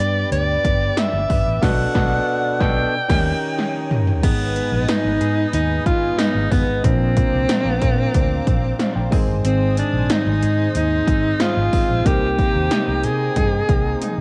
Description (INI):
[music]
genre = 1980s-style pop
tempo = 92 BPM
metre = 4/4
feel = straight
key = unclear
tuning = A4 = 440 Hz
[part]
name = bright alto saxophone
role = melody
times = 0.0-14.2 s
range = Cb4 to G5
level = -24 LUFS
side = equal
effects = cassette tape, tape echo
[part]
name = barky tine electric piano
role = accompaniment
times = 0.0-14.2 s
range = G2 to Ab5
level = -27 LUFS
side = equal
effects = cassette tape
[part]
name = phased analog pad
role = sustained chords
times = 0.0-14.2 s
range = B4 to Eb6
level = -35 LUFS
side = equal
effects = phaser, chorus, cassette tape
[part]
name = direct-recorded clean electric guitar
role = riff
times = 0.0-14.2 s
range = F3 to Bb4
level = -34 LUFS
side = equal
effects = none
[part]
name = vintage muted fingered electric bass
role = bass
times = 0.0-14.2 s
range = G1 to C3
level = -24 LUFS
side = equal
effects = none
[part]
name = 80s electronic pad drums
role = drums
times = 0.3-14.2 s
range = crash cymbal, hi-hat, kick drum, snare drum, tambourine, toms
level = -23 LUFS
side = equal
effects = gated reverb on snare and toms, cassette tape
[sound]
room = light reverb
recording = home recording on cassette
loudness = -19 LUFS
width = mono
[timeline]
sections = 0.0-4.2 A section; 4.2-14.2 A section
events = band accent 1.6-4.2; drum fill 3.6-4.2, 14.0; tine electric piano fill 8.5-9.5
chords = 0.0 G; 1.6 Bm7; 2.9 Eb7; 4.2 Abm; 6.8 Bbadd9; 9.1 Ab; 12.1 Cm7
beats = 0.32 0.97 | 1.62 2.28 2.93 3.58 | 4.23 4.88 5.54 6.19 | 6.84 7.49 8.15 8.80 | 9.45 10.10 10.76 11.41 | 12.06 12.71 13.36 14.02